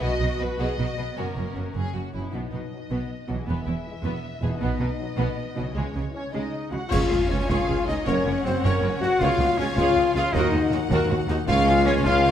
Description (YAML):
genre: cinematic, heroic adventure film score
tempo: 105 BPM (dotted quarters)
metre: 6/8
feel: straight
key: B major, Db major from 6.9 s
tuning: A4 = 440 Hz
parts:
  - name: warm studio violin section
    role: melody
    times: 0.0-12.3 s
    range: A#4 to F#5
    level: -34 LUFS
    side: left 3 dB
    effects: none
  - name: rich studio violin section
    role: second line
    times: 0.0-12.3 s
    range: G#3 to Ab5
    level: -35 LUFS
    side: left 3 dB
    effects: none
  - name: rich symphonic viola section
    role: accompaniment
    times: 0.0-12.3 s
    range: G#3 to F5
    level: -31 LUFS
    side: right 1 dB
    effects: none
  - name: concert harp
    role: arpeggios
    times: 0.0-12.3 s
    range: F#2 to D#5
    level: -34 LUFS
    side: left 6 dB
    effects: none
  - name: rich symphonic cello section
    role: bass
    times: 0.0-12.3 s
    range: Db2 to C#3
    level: -30 LUFS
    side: right 2 dB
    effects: none
  - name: warm studio double bass section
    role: bass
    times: 0.0-12.3 s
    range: E1 to Eb2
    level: -30 LUFS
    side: right 3 dB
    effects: none
  - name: warm French horn section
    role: sustained chords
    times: 2.7-12.3 s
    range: F#3 to F#4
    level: -25 LUFS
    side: left 4 dB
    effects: none
  - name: mellow hollow silver concert flute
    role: second line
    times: 6.1-12.3 s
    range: C5 to Gb5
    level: -32 LUFS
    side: left 2 dB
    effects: none
  - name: warm trumpet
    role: stabs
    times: 6.1-12.3 s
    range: C4 to Gb4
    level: -31 LUFS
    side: right 2 dB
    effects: none
  - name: clear tuba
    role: bass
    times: 6.9-12.3 s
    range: Gb1 to Eb2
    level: -30 LUFS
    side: right 3 dB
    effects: none
  - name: concert snare drum, clash cymbals and concert bass drum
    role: drums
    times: 6.9-12.2 s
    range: none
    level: -33 LUFS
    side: equal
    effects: none
  - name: clash cymbals and concert bass drum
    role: percussion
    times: 6.9-7.6 s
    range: none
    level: -30 LUFS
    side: equal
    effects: none
room: wet scoring stage reverb, RT60 1.6 s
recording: dark, warm production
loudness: -22 LUFS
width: side -10 dB against mid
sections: 0.0-2.3 A section; 2.3-6.9 B section; 6.9-12.3 A section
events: band accent 6.9-7.3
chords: 0.0 B; 1.2 F#; 2.3 B; 3.5 E; 4.6 B; 5.8 C#m; 6.9 Db; 8.1 Gb; 9.2 Db; 10.3 Ebm; 11.5 Db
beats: | 0.02 0.59 | 1.17 1.75 | 2.33 2.91 | 3.47 4.04 | 4.61 5.18 | 5.76 6.34 | 6.92 7.50 | 8.06 8.63 | 9.20 9.77 | 10.34 10.90 | 11.47 12.04